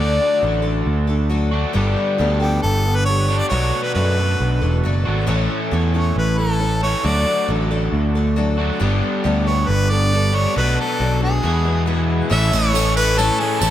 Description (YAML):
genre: folk rock and heartland rock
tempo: 136 BPM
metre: 4/4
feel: straight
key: A major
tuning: A4 = 440 Hz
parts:
  - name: clear harmonica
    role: melody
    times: 0.0-13.7 s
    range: G4 to E5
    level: -22 LUFS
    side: equal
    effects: dub echo
  - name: picked twelve-string acoustic guitar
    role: accompaniment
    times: 0.0-13.7 s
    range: A2 to A4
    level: -23 LUFS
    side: left 4 dB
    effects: dub echo
  - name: crunchy overdriven guitar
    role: riff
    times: 0.0-13.7 s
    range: E2 to A4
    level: -24 LUFS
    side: right 1 dB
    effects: none
  - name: picked electric bass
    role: bass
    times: 0.0-13.7 s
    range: E1 to F#2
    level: -19 LUFS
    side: equal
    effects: none
  - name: tambourine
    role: percussion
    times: 12.3-13.7 s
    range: none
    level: -28 LUFS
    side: right 11 dB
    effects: none
room: light reverb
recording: echo-heavy mix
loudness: -16 LUFS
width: side -12 dB against mid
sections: 0.0-12.3 A section; 12.3-13.7 B section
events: none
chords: 0.0 D; 1.8 Gadd9; 3.5 Bm7; 5.3 A; 7.0 D; 8.8 Gadd9; 10.6 Bm7; 11.4 E; 12.3 A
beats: 0.43 0.87 1.31 | 1.75 2.19 2.63 3.07 | 3.52 3.96 4.40 4.84 | 5.28 5.72 6.16 6.60 | 7.05 7.49 7.93 8.37 | 8.81 9.25 9.69 10.13 | 10.57 11.01 11.44 11.88 | 12.31 12.75 13.18 13.62